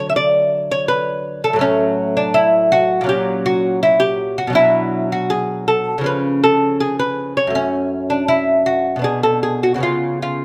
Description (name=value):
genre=classical, baroque-style dance for lute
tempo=81 BPM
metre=4/4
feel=rubato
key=F# minor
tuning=A4 = 440 Hz
part: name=lute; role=solo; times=0.0-10.4 s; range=F#2 to E5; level=-17 LUFS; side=equal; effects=none
room=light reverb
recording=close, detailed microphones, faint mains hum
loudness=-17 LUFS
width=mono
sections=0.0-10.4 A section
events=none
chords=0.0 D; 1.6 F#m/A; 3.1 F#/A#; 4.6 Bm; 6.1 C#; 7.6 F#m; 9.1 Bm; 9.8 C#7